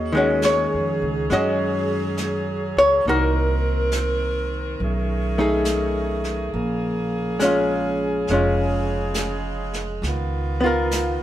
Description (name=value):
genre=jazz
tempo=69 BPM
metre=4/4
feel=swing 66% on 8ths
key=Eb minor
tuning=A4 = 445 Hz
part: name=archtop guitar, miked and amplified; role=accompaniment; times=0.0-11.2 s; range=Eb3 to Eb5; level=-21 LUFS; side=left 1 dB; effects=none
part: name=warm saxophone section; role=sustained chords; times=0.0-11.2 s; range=Db3 to Bb4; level=-27 LUFS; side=right 1 dB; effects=none
part: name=upright bass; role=bass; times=0.0-11.2 s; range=F1 to Gb2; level=-25 LUFS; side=right 1 dB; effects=none
part: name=jazz brush drum kit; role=drums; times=0.4-11.2 s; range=brushed snare drum, hi-hat, snare drum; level=-31 LUFS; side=right 1 dB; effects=none
room=moderate stone room reverb, RT60 1.4 s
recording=band playing live in one room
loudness=-19 LUFS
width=side -12 dB against mid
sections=0.0-11.2 A section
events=none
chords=0.0 Ebm11; 3.1 Cm7b5; 4.8 B13; 6.5 Bbm7; 10.0 Db13